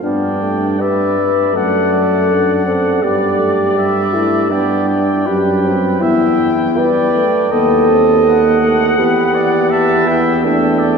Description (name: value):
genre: classical, brass quintet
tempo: 81 BPM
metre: 4/4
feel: straight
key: G major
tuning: A4 = 441 Hz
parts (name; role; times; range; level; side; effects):
- clear trumpet; melody; 0.0-11.0 s; D5 to A5; -22 LUFS; left 4 dB; none
- clear trombone; accompaniment; 0.0-11.0 s; G3 to D4; -22 LUFS; right 2 dB; none
- warm French horn; accompaniment; 0.0-11.0 s; D4 to B4; -15 LUFS; left 2 dB; none
- warm tuba; bass; 0.0-11.0 s; D#2 to G2; -18 LUFS; right 2 dB; none
- clear trumpet; second line; 0.1-11.0 s; B4 to E5; -20 LUFS; right 6 dB; none
room: wet cathedral reverb, RT60 5.3 s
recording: recorded in a church or concert hall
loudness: -11 LUFS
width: side -5 dB against mid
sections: 0.0-11.0 A section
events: none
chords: 0.0 G; 1.6 D/F#; 3.0 G; 6.0 Em; 7.5 B/D#; 9.0 Em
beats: | 0.04 0.81 1.56 2.29 | 3.03 3.77 4.51 5.27 | 6.01 6.77 7.51 8.24 | 8.98 9.71 10.43